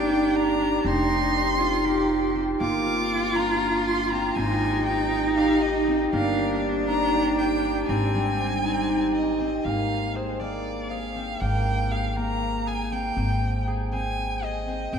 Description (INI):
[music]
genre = contemporary instrumental, chamber music in an uneven meter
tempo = 239 BPM (eighths)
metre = 7/8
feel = straight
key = Ab lydian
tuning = A4 = 439 Hz
[part]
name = rich violin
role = melody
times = 0.0-15.0 s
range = C5 to D6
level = -29 LUFS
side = equal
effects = none
[part]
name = rich cello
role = second line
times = 0.0-9.4 s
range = C4 to G4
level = -27 LUFS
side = right 1 dB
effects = none
[part]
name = concert harp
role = arpeggios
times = 0.0-15.0 s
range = G3 to Ab4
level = -26 LUFS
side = equal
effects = none
[part]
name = upright bass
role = bass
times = 0.0-15.0 s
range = F1 to Ab1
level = -30 LUFS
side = equal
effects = none
[sound]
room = wet cathedral reverb, RT60 6.8 s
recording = in a vast, echoing space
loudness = -22 LUFS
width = side -7 dB against mid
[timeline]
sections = 0.0-9.6 A section; 9.6-15.0 B section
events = none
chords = 0.0 Ebmaj7/G; 0.8 Fsus2; 2.6 Gm7; 4.4 Abmaj7; 6.1 Ebmaj7/G; 7.9 Abmaj7; 9.6 Bb7(no3)/Ab; 13.2 Abmaj7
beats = 0.09 0.34 0.60 | 0.85 1.10 1.35 1.60 1.85 2.10 2.36 | 2.61 2.86 3.11 3.36 3.61 3.87 4.12 | 4.37 4.62 4.87 5.12 5.37 5.62 5.88 | 6.13 6.38 6.63 6.88 7.13 7.38 7.63 | 7.89 8.14 8.39 8.64 8.89 9.14 9.40 | 9.65 9.90 10.15 10.40 10.65 10.90 11.16 | 11.41 11.66 11.91 12.16 12.41 12.67 12.92 | 13.17 13.42 13.67 13.93 14.18 14.43 14.68 | 14.93